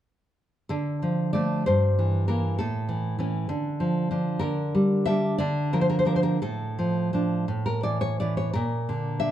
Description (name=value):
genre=romantic piece for solo classical guitar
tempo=56-67 BPM (dotted quarters)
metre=6/8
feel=rubato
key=D minor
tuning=A4 = 440 Hz
part: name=nylon-string guitar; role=solo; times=0.7-9.3 s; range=G2 to E5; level=-23 LUFS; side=equal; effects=none
room=moderate recital hall reverb, RT60 1.4 s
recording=dark, warm production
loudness=-23 LUFS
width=side -11 dB against mid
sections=0.7-9.3 A section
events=none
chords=0.7 Dm; 1.7 Edim/G; 2.6 A; 3.5 Dm; 4.4 Gm/D; 5.4 Dm; 6.4 Dm/A; 7.5 A; 8.5 Bb